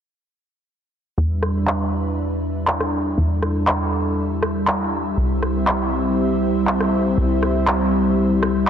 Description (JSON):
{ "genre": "progressive house", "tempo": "120 BPM", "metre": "4/4", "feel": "straight", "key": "E minor", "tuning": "A4 = 439 Hz", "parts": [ { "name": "lush unison pad", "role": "sustained chords", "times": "1.2-8.7 s", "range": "G3 to E5", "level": "-20 LUFS", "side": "equal", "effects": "chorus" }, { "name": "plucky analog bass", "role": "bass", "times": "1.2-8.7 s", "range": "C2 to E2", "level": "-23 LUFS", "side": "equal", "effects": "none" }, { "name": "electronic rim click and handclaps", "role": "drums", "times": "1.4-8.7 s", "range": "none", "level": "-23 LUFS", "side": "equal", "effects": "low-pass filter on snare" } ], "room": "moderate lush hall reverb, RT60 2.0 s", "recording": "dense, heavily limited modern master", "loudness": "-18 LUFS", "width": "side -8 dB against mid", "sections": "1.2-8.7 A section", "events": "filter sweep on analog synth pad 1.2-8.7", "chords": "1.2 Em7; 5.2 C" }